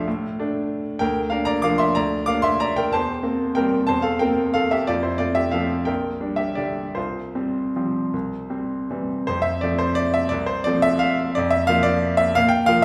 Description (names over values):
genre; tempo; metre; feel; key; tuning
classical, piano waltz; 151-198 BPM; 3/4; rubato; F major; A4 = 440 Hz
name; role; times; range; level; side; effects
bright grand piano; solo; 0.0-12.8 s; Bb1 to D6; -22 LUFS; equal; none
room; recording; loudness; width
wet large studio reverb, RT60 1.3 s; heard from further back in the room; -22 LUFS; mono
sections
0.0-9.3 A section; 9.3-12.8 B section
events
none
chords
0.0 Dm; 1.0 Bb/D; 2.9 C7/E; 4.9 F; 5.9 Gm/Bb; 7.0 Csus4; 8.1 C; 9.3 F; 11.4 Bb/F